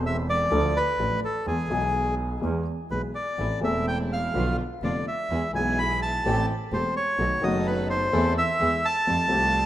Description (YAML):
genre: tango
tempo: 127 BPM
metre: 4/4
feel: rubato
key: A minor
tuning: A4 = 440 Hz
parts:
  - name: dark baby grand piano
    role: accompaniment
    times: 0.0-9.7 s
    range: E1 to A4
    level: -29 LUFS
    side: left 1 dB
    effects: none
  - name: rich double bass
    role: bass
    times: 0.0-9.7 s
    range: E1 to F2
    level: -29 LUFS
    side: right 2 dB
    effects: none
  - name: bandoneon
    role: melody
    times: 0.1-9.7 s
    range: G#4 to B5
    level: -25 LUFS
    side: equal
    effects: none
  - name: rich chamber string section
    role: stabs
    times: 3.4-9.7 s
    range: A3 to A4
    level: -35 LUFS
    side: right 2 dB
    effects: none
room: moderate plate reverb, RT60 3.1 s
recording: rough home demo mix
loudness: -23 LUFS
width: side -13 dB against mid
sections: 0.0-9.7 A section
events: none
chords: 0.0 Amadd9; 0.5 Dm; 1.5 E; 3.4 Am; 4.3 Bdim; 5.3 E; 6.3 Am7; 7.2 B7; 8.1 Am/E; 8.6 E; 9.1 Fadd9